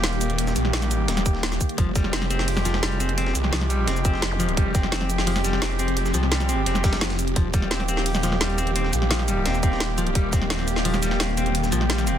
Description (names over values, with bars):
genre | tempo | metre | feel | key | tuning
dark technical drum and bass | 172 BPM | 4/4 | straight | unclear | A4 = 441 Hz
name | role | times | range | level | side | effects
swarming drone | sustained chords | 0.0-12.2 s | Eb3 to G4 | -30 LUFS | left 1 dB | built-in reverb, sidechain pumping
dark brass ensemble | stabs | 0.0-12.2 s | Ab3 to G4 | -30 LUFS | right 2 dB | digital delay
snarling distorted saw bass | bass | 0.0-12.2 s | Eb1 to C2 | -25 LUFS | equal | distortion, overdrive, sidechain pumping
breakbeat sampler-style drum kit | drums | 0.0-12.2 s | hi-hat, snare drum | -35 LUFS | equal | none
drum and bass drum kit | drums | 0.0-12.1 s | hi-hat, shaker, snare drum | -27 LUFS | equal | none
electronic kick drum | drums | 1.3-10.4 s | none | -21 LUFS | equal | none
clean electric guitar | arpeggios | 1.8-12.2 s | F3 to C4 | -29 LUFS | left 3 dB | sidechain pumping, digital delay
zap | sound effects | 4.3-4.4 s | none | -35 LUFS | equal | none
room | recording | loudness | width
little or no reverb | dense, heavily limited modern master | -20 LUFS | side -10 dB against mid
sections
0.0-12.2 A section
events
none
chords
0.0 Eb; 1.8 Fmadd9; 7.4 Eb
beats
0.04 | 0.39 0.73 1.08 1.43 | 1.78 2.13 2.48 2.83 | 3.18 3.52 3.87 4.22 | 4.57 4.92 5.27 5.62 | 5.97 6.32 6.67 7.01 | 7.36 7.71 8.06 8.41 | 8.76 9.11 9.46 9.80 | 10.15 10.50 10.85 11.20 | 11.55 11.90